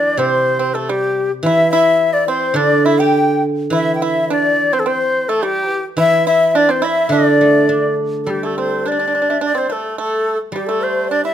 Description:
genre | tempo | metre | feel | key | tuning
chinese traditional, Chinese chamber ensemble | 106 BPM | 2/4 | rubato | D shang mode | A4 = 438 Hz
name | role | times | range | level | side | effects
breathy bright xiao | melody | 0.0-11.3 s | G4 to G5 | -17 LUFS | equal | none
breathy bright xiao | second line | 0.0-11.3 s | G4 to G5 | -20 LUFS | left 6 dB | none
pipa | second line | 0.0-11.3 s | G3 to G4 | -21 LUFS | right 6 dB | none
guzheng | accompaniment | 0.0-11.3 s | C3 to D4 | -19 LUFS | right 2 dB | none
room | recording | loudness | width
moderate recital hall reverb, RT60 1.4 s | close, detailed microphones | -13 LUFS | side -10 dB against mid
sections
0.0-8.3 A section; 8.3-11.3 B section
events
none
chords
none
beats
| 0.34 0.90 | 1.45 2.00 | 2.57 3.14 | 3.73 4.30 | 4.88 5.44 | 6.00 6.56 | 7.13 7.70 | 8.28 8.86 | 9.43 9.99 | 10.54 11.10

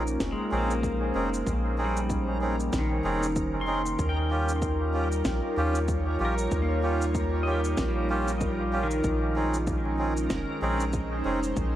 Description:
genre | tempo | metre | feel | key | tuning
ambient dub | 95 BPM | 4/4 | swing 59% on 16ths | Bb dorian | A4 = 440 Hz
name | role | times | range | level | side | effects
airy breathy pad | sustained chords | 0.0-11.8 s | G3 to Db5 | -31 LUFS | right 2 dB | chorus
pedal steel guitar | arpeggios | 0.0-10.8 s | Eb3 to C6 | -34 LUFS | left 2 dB | analog delay
melodica | stabs | 0.0-11.4 s | C4 to Ab4 | -32 LUFS | right 1 dB | dub echo
soft dub sub bass | bass | 0.0-11.8 s | F1 to Eb2 | -30 LUFS | equal | none
backwards swelling texture | texture | 0.1-11.8 s | Bb4 | -37 LUFS | left 3 dB | built-in reverb
electronic shaker and snare drum | drums | 0.1-11.7 s | none | -37 LUFS | equal | overdrive, small room ambience, dub echo
electronic kick drum | drums | 0.2-11.7 s | none | -33 LUFS | equal | overdrive, small room ambience
room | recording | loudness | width
light reverb, digital ambience | echo-heavy mix, vinyl crackle | -25 LUFS | side -12 dB against mid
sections
0.0-11.8 A section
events
none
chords
0.0 Bbm11; 4.0 Eb9; 9.0 Bbm11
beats
0.20 0.83 | 1.46 2.09 2.72 3.36 | 3.99 4.62 5.25 5.88 | 6.51 7.14 7.78 8.41 | 9.04 9.67 10.30 10.94 | 11.57

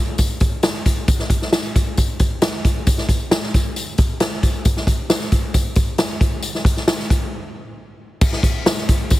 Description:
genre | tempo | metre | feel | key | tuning
soul | 134 BPM | 4/4 | straight | none | none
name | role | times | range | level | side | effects
swinging big-band drum kit | drums | 0.2-9.2 s | crash cymbal, hi-hat, kick drum, snare drum | -16 LUFS | equal | none
tambourine | percussion | 0.2-9.2 s | none | -31 LUFS | left 4 dB | none
room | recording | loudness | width
little or no reverb | heavily compressed radio sound, multiband compression | -16 LUFS | side -16 dB against mid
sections
0.0-8.2 A section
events
break 7.3-8.2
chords
none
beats
0.19 0.63 | 1.08 1.53 1.98 2.42 | 2.87 3.32 3.76 4.21 | 4.65 5.10 5.54 5.99 | 6.43 6.88 7.33 7.77 | 8.22 8.66 9.11

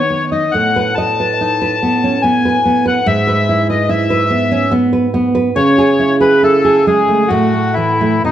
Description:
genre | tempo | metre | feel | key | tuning
romantic duo for bandoneon and classical guitar | 71 BPM | 3/4 | rubato | E major | A4 = 440 Hz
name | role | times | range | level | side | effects
bandoneon | melody | 0.0-8.3 s | D#4 to A5 | -15 LUFS | left 4 dB | none
nylon-string guitar | accompaniment | 0.0-8.3 s | G#2 to D#5 | -13 LUFS | right 2 dB | none
room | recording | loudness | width
wet recital hall reverb, RT60 1.3 s | dark, warm production | -11 LUFS | side -11 dB against mid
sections
0.0-8.3 A section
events
none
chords
0.0 B/D#; 0.5 B7/A; 3.1 E/G#; 5.6 C#m; 7.3 A5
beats
| 0.53 1.39 2.23 | 3.06 3.89 4.72 | 5.56 6.42 7.29 | 8.24

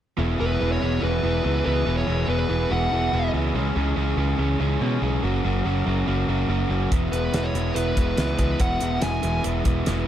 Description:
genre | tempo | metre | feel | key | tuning
classic rock | 142 BPM | 4/4 | straight | E lydian | A4 = 440 Hz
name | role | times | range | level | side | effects
biting overdriven guitar | riff | 0.2-10.1 s | E2 to C#4 | -28 LUFS | left 9 dB | none
overdriven electric guitar | riff | 0.2-10.1 s | C#3 to G#4 | -27 LUFS | right 9 dB | none
modern bright picked electric bass | bass | 0.2-10.0 s | E1 to B2 | -25 LUFS | equal | none
smooth overdriven lead guitar | melody | 0.4-3.3, 7.1-9.4 s | B4 to G#5 | -27 LUFS | equal | slapback echo
damped 70s drum kit | drums | 6.9-10.0 s | hi-hat, kick drum, snare drum | -25 LUFS | equal | none
room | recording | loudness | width
light reverb, studio reverb | none | -21 LUFS | side -11 dB against mid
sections
0.2-10.1 A section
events
none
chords
0.2 E; 3.5 C#m; 5.2 F#; 6.9 E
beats
| 0.18 0.60 1.02 1.44 | 1.86 2.28 2.70 3.12 | 3.55 3.97 4.39 4.81 | 5.23 5.65 6.07 6.49 | 6.92 7.34 7.76 8.18 | 8.60 9.02 9.44 9.86

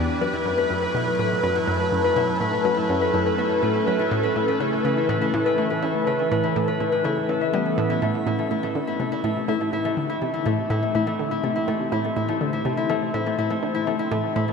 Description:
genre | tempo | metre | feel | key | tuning
ambient, sequencer-driven space music | 123 BPM | 4/4 | straight | A minor from 8.0 s | A4 = 436 Hz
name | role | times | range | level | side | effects
phased analog pad | sustained chords | 0.0-14.5 s | E3 to C5 | -26 LUFS | right 1 dB | phaser, chorus, shimmer reverb
analog pluck | riff | 0.0-14.5 s | E2 to G3 | -27 LUFS | right 1 dB | chorus, analog delay
concert harp | arpeggios | 0.2-14.5 s | A3 to E5 | -24 LUFS | left 4 dB | auto-pan, shimmer reverb, analog delay
room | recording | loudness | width
wet huge ambient reverb, RT60 8.7 s | none | -20 LUFS | side -5 dB against mid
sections
0.0-8.0 A section; 8.0-14.5 B section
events
fade-in on analog synth pad 8.0-14.5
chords
0.2 F#m; 4.1 A; 8.0 Am7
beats
| 0.21 0.70 1.19 1.68 | 2.17 2.65 3.14 3.63 | 4.12 4.60 5.09 5.58 | 6.07 6.55 7.04 7.53 | 8.02 8.51 8.99 9.48 | 9.97 10.46 10.95 11.43 | 11.92 12.41 12.90 13.38 | 13.87 14.36

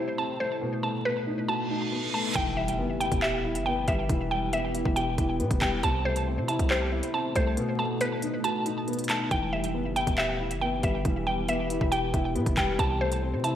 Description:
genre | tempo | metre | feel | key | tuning
hip hop, drill | 138 BPM | 4/4 | half-time | E harmonic minor | A4 = 438 Hz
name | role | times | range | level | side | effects
dark concert grand piano | accompaniment | 0.0-13.6 s | B2 to G4 | -31 LUFS | left 2 dB | lush chorus, low-pass filter
deep dark ambient pad | sustained chords | 0.0-13.6 s | B2 to G4 | -35 LUFS | equal | chorus, built-in reverb
mallet-like synth pluck | arpeggios | 0.0-13.6 s | B4 to A5 | -30 LUFS | right 1 dB | chorus, low-pass filter, tape echo
reverse cymbal and impact | sound effects | 1.6-4.1 s | none | -35 LUFS | right 2 dB | none
distorted 808-style bass | bass | 2.4-13.5 s | D#1 to C3 | -31 LUFS | equal | distortion
drill drum kit | drums | 2.4-13.5 s | handclaps, hi-hat, kick drum | -30 LUFS | equal | none
room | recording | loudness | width
wet lush hall reverb, RT60 1.5 s, digital ambience | dreamy mix soaked in reverb, vinyl crackle | -25 LUFS | side -10 dB against mid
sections
0.0-2.4 A section; 2.4-13.6 B section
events
reverse cymbal 1.6-2.4; impact 2.4-4.1; kick muted 7.6-9.3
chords
0.0 C6; 0.6 B7; 2.4 Em; 5.8 C6; 7.6 B7; 9.3 Em; 12.8 C6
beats
0.18 | 0.62 1.05 1.49 1.92 | 2.35 2.79 3.22 3.66 | 4.09 4.53 4.96 5.40 | 5.83 6.27 6.70 7.14 | 7.57 8.01 8.44 8.88 | 9.31 9.75 10.18 10.62 | 11.05 11.48 11.92 12.36 | 12.79 13.22

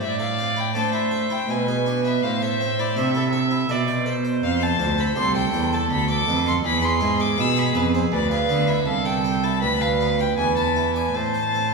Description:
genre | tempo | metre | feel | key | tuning
classical, baroque-style sonata movement with continuo | 81 BPM | 3/4 | straight | unclear | A4 = 440 Hz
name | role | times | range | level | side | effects
rich violin | melody | 0.0-11.7 s | A4 to E6 | -25 LUFS | left 4 dB | none
dark violin | second line | 0.0-11.7 s | G#4 to E5 | -25 LUFS | right 6 dB | none
harpsichord | accompaniment | 0.0-11.7 s | C2 to D5 | -28 LUFS | left 1 dB | none
rich cello | bass | 0.0-11.7 s | C2 to A3 | -24 LUFS | right 2 dB | none
room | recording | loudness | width
wet recital hall reverb, RT60 1.8 s | recorded in a church or concert hall, small room ambience | -19 LUFS | side -3 dB against mid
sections
0.0-11.7 A section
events
none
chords
0.0 Am; 1.5 G#dim/B; 2.2 Am; 4.4 F; 5.9 Bm7b5/D; 6.6 E; 8.1 E7/D; 8.9 Am/C; 9.6 Bdim/D; 10.4 E5; 11.2 Am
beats
| 0.02 0.76 1.50 | 2.24 2.97 3.70 | 4.44 5.17 5.91 | 6.65 7.39 8.13 | 8.87 9.62 10.38 | 11.15

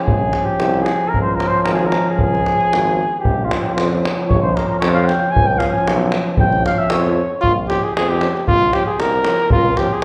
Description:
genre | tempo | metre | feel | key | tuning
balkan folk, Balkan brass band | 114 BPM | 2/4 | straight | unclear | A4 = 438 Hz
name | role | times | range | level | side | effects
warm flugelhorn | second line | 0.0-7.4 s | F4 to Ab5 | -22 LUFS | equal | none
clear euphonium | accompaniment | 0.0-9.9 s | Db4 | -29 LUFS | equal | none
warm trombone | accompaniment | 0.0-9.9 s | F3 | -26 LUFS | equal | none
clear tuba | bass | 0.1-9.8 s | Ab1 to F2 | -25 LUFS | equal | none
davul | percussion | 0.1-10.0 s | none | -23 LUFS | equal | none
dark cornet | melody | 7.4-10.0 s | F4 to Bb4 | -19 LUFS | equal | none
room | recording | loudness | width
wet recital hall reverb, RT60 1.3 s | recorded in a church or concert hall | -17 LUFS | mono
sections
0.0-7.4 A section; 7.4-10.0 B section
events
flugelhorn solo 0.0-7.4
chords
0.0 Bbm; 1.1 Db; 3.2 Bbm; 5.3 Db; 6.4 Bbm; 9.5 Db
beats
| 0.05 0.58 | 1.11 1.65 | 2.18 2.71 | 3.23 3.76 | 4.29 4.81 | 5.33 5.86 | 6.38 6.90 | 7.43 7.95 | 8.47 8.99 | 9.52 10.04

